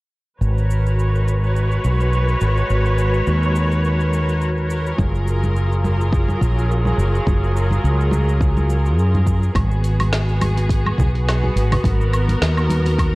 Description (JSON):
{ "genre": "sunset chillout", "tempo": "105 BPM", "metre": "4/4", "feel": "swing 55% on 16ths", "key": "G# dorian", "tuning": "A4 = 440 Hz", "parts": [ { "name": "rich symphonic string section", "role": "sustained chords", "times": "0.4-13.2 s", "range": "F#3 to C#5", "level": "-23 LUFS", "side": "equal", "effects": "none" }, { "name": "mellow fretless electric bass", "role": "bass", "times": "0.4-13.2 s", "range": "F#1 to F#2", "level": "-17 LUFS", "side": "equal", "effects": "none" }, { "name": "deep house drum kit", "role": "drums", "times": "0.4-13.1 s", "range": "cabasa, hi-hat, snare drum, woodblock", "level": "-26 LUFS", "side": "equal", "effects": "none" }, { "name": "electronic kick drum", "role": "drums", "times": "5.0-13.1 s", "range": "none", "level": "-20 LUFS", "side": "equal", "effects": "none" }, { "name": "congas", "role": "percussion", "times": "5.0-13.0 s", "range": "none", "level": "-26 LUFS", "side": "equal", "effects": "none" } ], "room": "light reverb", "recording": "worn, warbling old tape, cassette tape, warbly pitch drift", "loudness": "-16 LUFS", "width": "side -22 dB against mid", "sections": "0.4-9.6 A section; 9.6-13.2 B section", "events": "none", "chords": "0.4 G#m11; 5.0 F#maj9; 9.6 G#m9", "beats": "| 0.41 0.99 1.56 2.13 | 2.70 3.27 3.84 4.42 | 4.99 5.56 6.13 6.70 | 7.27 7.84 8.41 8.99 | 9.56 10.13 10.70 11.27 | 11.84 12.41 12.99" }